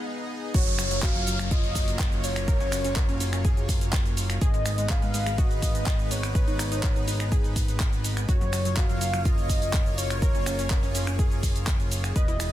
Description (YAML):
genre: progressive house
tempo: 124 BPM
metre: 4/4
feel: straight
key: F# major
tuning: A4 = 438 Hz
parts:
  - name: supersaw pad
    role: sustained chords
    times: 0.0-12.5 s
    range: E3 to D#5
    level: -35 LUFS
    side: equal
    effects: sidechain pumping
  - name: warm velvety synth lead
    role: melody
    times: 0.5-12.5 s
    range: C#5 to E#5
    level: -33 LUFS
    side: equal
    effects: chorus, tape echo
  - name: wide unison pluck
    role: arpeggios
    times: 0.5-12.5 s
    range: F#3 to B4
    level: -36 LUFS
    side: equal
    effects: cassette tape, sidechain pumping, tape echo
  - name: fat analog bass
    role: bass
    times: 0.5-12.5 s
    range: E1 to G#1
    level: -30 LUFS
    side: equal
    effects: sidechain pumping
  - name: deep house drum kit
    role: drums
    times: 0.5-12.5 s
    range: cabasa, finger snaps, handclaps, hi-hat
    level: -32 LUFS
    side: right 1 dB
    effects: soft clipping on snare
  - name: electronic kick drum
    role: drums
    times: 0.5-12.3 s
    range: none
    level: -24 LUFS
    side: equal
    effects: none
  - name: downlifter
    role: sound effects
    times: 0.5-4.4 s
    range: none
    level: -34 LUFS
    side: right 1 dB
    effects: none
room: little or no reverb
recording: dense, heavily limited modern master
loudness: -23 LUFS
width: side -13 dB against mid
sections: 0.5-12.5 A section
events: break 0.0-0.5; drop 0.5-12.5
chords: 0.0 G#m; 0.5 F#maj7; 4.4 G#m; 8.3 F#maj7